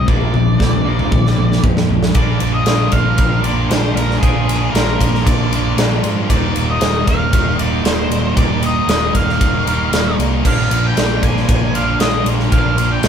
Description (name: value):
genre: quiet-loud alternative rock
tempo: 116 BPM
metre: 4/4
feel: straight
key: unclear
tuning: A4 = 440 Hz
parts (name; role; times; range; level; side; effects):
- octave-fuzz lead guitar; melody; 0.0-13.1 s; Ab4 to Ab5; -22 LUFS; equal; distortion, tape echo
- thick fuzz guitar; riff; 0.0-13.1 s; Eb2 to F4; -23 LUFS; left 8 dB; distortion
- thick fuzz guitar; riff; 0.0-13.1 s; Eb2 to F4; -22 LUFS; right 6 dB; distortion
- picked electric bass; bass; 0.0-13.1 s; Eb1 to Ab2; -19 LUFS; equal; none
- big rock drum kit; drums; 0.1-13.1 s; crash cymbal, kick drum, ride cymbal, snare drum, toms; -16 LUFS; equal; none
- bright symphonic string section; sustained chords; 2.1-13.1 s; D3 to Bb5; -34 LUFS; left 1 dB; none
room: moderate studio reverb, RT60 0.9 s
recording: band playing live in one room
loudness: -13 LUFS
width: side -8 dB against mid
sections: 0.0-2.1 A section; 2.1-13.1 B section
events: drum fill 1.1-2.1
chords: 0.1 Bb; 6.3 Ebsus2; 10.4 Bb